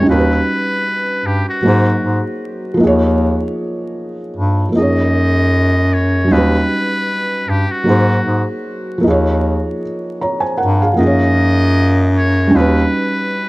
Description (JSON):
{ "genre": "lo-fi hip hop", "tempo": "77 BPM", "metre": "4/4", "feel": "swing 58% on 16ths", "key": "unclear", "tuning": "A4 = 442 Hz", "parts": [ { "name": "trumpet with metal mute", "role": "melody", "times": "0.0-13.5 s", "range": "F#4 to Eb5", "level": "-20 LUFS", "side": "equal", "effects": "none" }, { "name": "felt-muted upright piano", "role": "accompaniment", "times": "0.0-13.5 s", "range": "F3 to Bb5", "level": "-17 LUFS", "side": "right 1 dB", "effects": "cassette tape" }, { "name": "warm bass clarinet", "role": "bass", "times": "0.0-12.9 s", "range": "Eb2 to Ab2", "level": "-14 LUFS", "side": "equal", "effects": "none" } ], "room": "light reverb", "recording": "dark, warm production, vinyl crackle", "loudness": "-12 LUFS", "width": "side -21 dB against mid", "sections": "0.0-13.5 A section", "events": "none", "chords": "0.1 Eb7alt; 1.6 Ab9; 2.8 Ebsus2; 4.7 Gbmaj7; 6.3 Eb7alt; 7.9 Ab9; 9.0 Ebsus2; 11.0 Gbmaj7; 12.5 Eb7alt" }